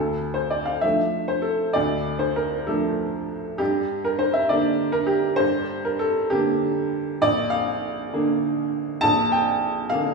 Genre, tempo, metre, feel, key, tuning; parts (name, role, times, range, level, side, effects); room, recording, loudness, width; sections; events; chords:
neoclassical minimalist piano; 66 BPM (dotted quarters); 6/8; rubato; D minor; A4 = 443 Hz
clear upright piano; solo; 0.0-10.1 s; Bb1 to A5; -21 LUFS; right 1 dB
wet recital hall reverb, RT60 1.4 s; recorded in a church or concert hall, small room ambience; -21 LUFS; side -3 dB against mid
0.0-10.1 A section
0.0 Dm; 3.6 Gm; 7.2 Bb